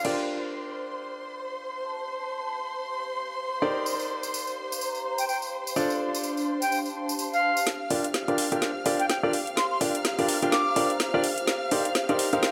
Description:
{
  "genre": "piano house",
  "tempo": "126 BPM",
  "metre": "4/4",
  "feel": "swing 58% on 16ths",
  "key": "G minor",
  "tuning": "A4 = 439 Hz",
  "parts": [
    { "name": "bright reedy jazz flute", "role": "melody", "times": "0.0, 5.2-10.9 s", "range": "F5 to D6", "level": "-31 LUFS", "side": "equal", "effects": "delay" },
    { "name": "dark symphonic violin section", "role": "sustained chords", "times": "0.0-12.5 s", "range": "C5 to F6", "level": "-35 LUFS", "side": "equal", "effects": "none" },
    { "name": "bright upright piano", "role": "riff", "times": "0.0-12.5 s", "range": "D4 to G5", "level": "-31 LUFS", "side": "equal", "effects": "low-pass filter, delay" },
    { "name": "garage drum kit", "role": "drums", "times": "0.0-0.2, 7.7-12.5 s", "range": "crash cymbal, hi-hat, snare drum", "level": "-31 LUFS", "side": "equal", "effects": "studio reverb" },
    { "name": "warbly tape-like pad", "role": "texture", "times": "0.0-12.5 s", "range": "D4 to Bb5", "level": "-37 LUFS", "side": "equal", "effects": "chorus, built-in reverb" },
    { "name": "tambourine", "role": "percussion", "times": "3.9-7.6 s", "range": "none", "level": "-36 LUFS", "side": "equal", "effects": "none" }
  ],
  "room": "moderate plate reverb, RT60 1.9 s, studio ambience",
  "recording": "none",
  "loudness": "-27 LUFS",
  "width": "mono",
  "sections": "0.0-7.7 A section; 7.7-12.5 B section",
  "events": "build-up 7.7-12.5; drum fill 7.7-12.5; filter sweep on upright piano 7.7-12.5",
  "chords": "0.0 Gm7; 3.6 Cm9; 5.8 Dm7; 7.7 Gm7; 11.2 Cm9"
}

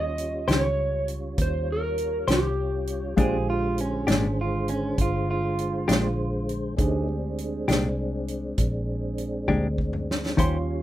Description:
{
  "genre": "slow blues",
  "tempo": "67 BPM (dotted quarters)",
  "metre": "12/8",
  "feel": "straight",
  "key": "Bb mixolydian",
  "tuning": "A4 = 440 Hz",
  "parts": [
    { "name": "electric slide guitar", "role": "melody", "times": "0.0-4.1 s", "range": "G4 to Eb5", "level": "-28 LUFS", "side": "right 1 dB", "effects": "none" },
    { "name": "dark upright piano", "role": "accompaniment", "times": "0.0-10.8 s", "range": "Ab3 to C6", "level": "-35 LUFS", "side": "right 4 dB", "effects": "none" },
    { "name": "tonewheel organ", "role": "sustained chords", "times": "0.0-10.8 s", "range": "D3 to Db5", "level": "-32 LUFS", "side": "equal", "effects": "chorus vibrato, slow rotary speaker" },
    { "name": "vintage muted fingered electric bass", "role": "bass", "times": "0.0-10.8 s", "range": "G1 to Eb2", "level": "-29 LUFS", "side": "equal", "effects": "none" },
    { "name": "natural country drum kit", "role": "drums", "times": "0.2-10.5 s", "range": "hi-hat, kick drum, snare drum, toms", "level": "-27 LUFS", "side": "equal", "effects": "none" },
    { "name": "clean electric guitar", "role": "accompaniment", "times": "0.5-10.6 s", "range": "Bb2 to C5", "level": "-24 LUFS", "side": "left 4 dB", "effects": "tremolo" },
    { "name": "electric guitar through a small old amp", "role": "second line", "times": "3.2-6.5 s", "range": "Db4 to Ab4", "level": "-29 LUFS", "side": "right 3 dB", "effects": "none" }
  ],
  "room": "little or no reverb",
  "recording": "rough home demo mix",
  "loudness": "-23 LUFS",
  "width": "side -13 dB against mid",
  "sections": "0.0-10.8 A section",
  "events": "drum fill 9.5-10.4",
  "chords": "0.0 Eb13; 3.2 Bb13"
}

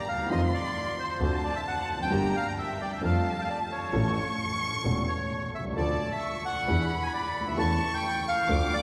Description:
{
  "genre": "tango",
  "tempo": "132 BPM",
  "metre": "4/4",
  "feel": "rubato",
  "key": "D harmonic minor",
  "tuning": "A4 = 440 Hz",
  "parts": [
    { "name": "bandoneon", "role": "melody", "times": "0.0-8.8 s", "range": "C5 to A5", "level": "-34 LUFS", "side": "equal", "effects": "none" },
    { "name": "warm studio violin section", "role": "second line", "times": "0.0-8.8 s", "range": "G5 to D6", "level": "-36 LUFS", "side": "equal", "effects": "none" },
    { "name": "warm concert grand piano", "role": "accompaniment", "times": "0.1-8.7 s", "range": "E1 to A4", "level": "-34 LUFS", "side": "equal", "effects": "none" },
    { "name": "clear double bass", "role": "bass", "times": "0.1-8.7 s", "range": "E1 to F2", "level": "-35 LUFS", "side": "equal", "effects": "none" }
  ],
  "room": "wet cathedral reverb, RT60 6.3 s",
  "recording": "recorded in a church or concert hall",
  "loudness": "-29 LUFS",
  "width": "mono",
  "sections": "0.0-8.8 A section",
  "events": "none",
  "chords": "0.3 F7; 1.2 D7; 2.1 Gm; 3.0 Dm/F; 3.9 A; 5.8 Dm; 6.7 E7; 7.6 A/E"
}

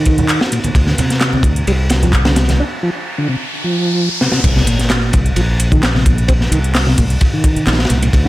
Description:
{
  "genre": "breakbeat, breaks",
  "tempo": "130 BPM",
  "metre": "4/4",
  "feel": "straight",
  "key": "C minor",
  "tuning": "A4 = 440 Hz",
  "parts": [
    { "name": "tonewheel organ", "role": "riff", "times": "0.0-8.3 s", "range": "Bb2 to D4", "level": "-18 LUFS", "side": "equal", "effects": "chorus vibrato, slow rotary speaker, overdrive, dub echo" },
    { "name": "crunchy breakbeat drum kit", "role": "drums", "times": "0.1-8.3 s", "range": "crash cymbal, hi-hat, kick drum, ride cymbal, snare drum", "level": "-16 LUFS", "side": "equal", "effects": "none" },
    { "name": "house drum kit", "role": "drums", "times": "0.1-8.2 s", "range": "handclaps, hi-hat", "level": "-22 LUFS", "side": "right 1 dB", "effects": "none" },
    { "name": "congas", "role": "percussion", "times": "0.1-2.6 s", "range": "none", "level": "-21 LUFS", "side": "right 2 dB", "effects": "none" },
    { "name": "modern bright fingered electric bass", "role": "bass", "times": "0.7-8.3 s", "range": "Bb1 to D2", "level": "-15 LUFS", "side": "equal", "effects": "tube saturation" },
    { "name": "riser and impact", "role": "sound effects", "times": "2.0-6.3 s", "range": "none", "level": "-23 LUFS", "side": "equal", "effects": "none" }
  ],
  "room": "studio reverb",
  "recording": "none",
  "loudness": "-12 LUFS",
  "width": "side -17 dB against mid",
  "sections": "0.0-4.4 A section; 4.4-8.3 B section",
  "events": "riser 2.0-4.4; break 2.6-4.4; drum fill 4.2; drop 4.4-8.3; impact 4.4-6.3",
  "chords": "0.0 Cm7 (rootless); 0.8 Dm7; 4.4 Cm7"
}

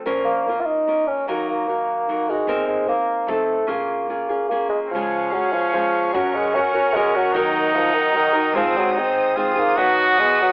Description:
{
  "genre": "mexican folk, mariachi",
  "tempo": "148 BPM",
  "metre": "3/4",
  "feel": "rubato",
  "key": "Bb minor, Db major from 4.9 s",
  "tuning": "A4 = 440 Hz",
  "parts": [
    { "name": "nylon-string guitar", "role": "accompaniment", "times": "0.0-10.5 s", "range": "Ab2 to Cb5", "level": "-25 LUFS", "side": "equal", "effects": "none" },
    { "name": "upright bass", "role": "bass", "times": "0.1-10.3 s", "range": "Ab1 to Gb2", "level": "-41 LUFS", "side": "equal", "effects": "none" },
    { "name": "mellow bassoon", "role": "melody", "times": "0.2-10.5 s", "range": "Eb3 to F4", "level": "-20 LUFS", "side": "equal", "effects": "none" },
    { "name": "clear trumpet", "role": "second line", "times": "4.9-10.5 s", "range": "C4 to Gb4", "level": "-20 LUFS", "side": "right 1 dB", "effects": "none" },
    { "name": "clear studio violin section", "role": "sustained chords", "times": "4.9-10.5 s", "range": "Ab4 to Eb6", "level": "-28 LUFS", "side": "equal", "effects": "none" }
  ],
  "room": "moderate large studio reverb, RT60 0.9 s",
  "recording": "band playing live in one room, telephone sound",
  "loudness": "-17 LUFS",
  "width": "side -25 dB against mid",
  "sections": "0.0-4.9 A section; 4.9-10.5 B section",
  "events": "none",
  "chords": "0.1 Bbm; 1.3 Ebm; 2.5 F7sus4; 3.3 F7; 3.7 Bbm7; 4.9 Db; 6.1 Gb; 7.3 Ebm; 8.5 Ab; 9.8 Cb"
}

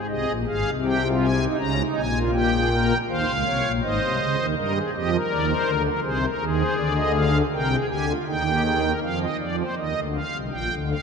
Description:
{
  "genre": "classical, baroque-style 3-part fugue for pipe organ",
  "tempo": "80 BPM",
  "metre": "3/4",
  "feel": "straight",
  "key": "Ab major",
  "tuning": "A4 = 440 Hz",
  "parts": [
    { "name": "pipe organ, strings celeste", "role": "solo", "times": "0.0-11.0 s", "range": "Ab1 to Bb5", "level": "-21 LUFS", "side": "equal", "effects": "none" }
  ],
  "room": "wet cathedral reverb, RT60 5.0 s",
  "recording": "in a vast, echoing space",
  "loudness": "-21 LUFS",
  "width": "side -6 dB against mid",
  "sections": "0.1-9.0 A section; 9.0-11.0 B section",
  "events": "none",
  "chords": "0.1 Ab; 1.6 Db; 2.3 Eb7/Bb; 3.8 Ab; 4.6 Eb; 6.0 Ab/C; 6.8 Bb7/D (rootless); 8.3 Eb; 9.0 F5; 10.5 Bb"
}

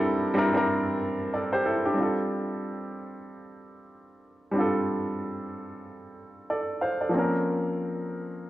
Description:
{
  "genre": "R&B",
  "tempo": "93 BPM",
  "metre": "4/4",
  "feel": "swing 60% on 16ths",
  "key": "F major",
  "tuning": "A4 = 443 Hz",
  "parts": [
    { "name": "warm upright piano", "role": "solo", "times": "0.0-8.5 s", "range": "F3 to F5", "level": "-26 LUFS", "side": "equal", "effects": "slapback echo" }
  ],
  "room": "light reverb",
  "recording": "none",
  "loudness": "-25 LUFS",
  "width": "side -15 dB against mid",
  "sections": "0.0-2.0 A section; 2.0-8.5 B section",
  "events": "none",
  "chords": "0.0 C9; 2.0 F69; 7.1 Bbmadd9"
}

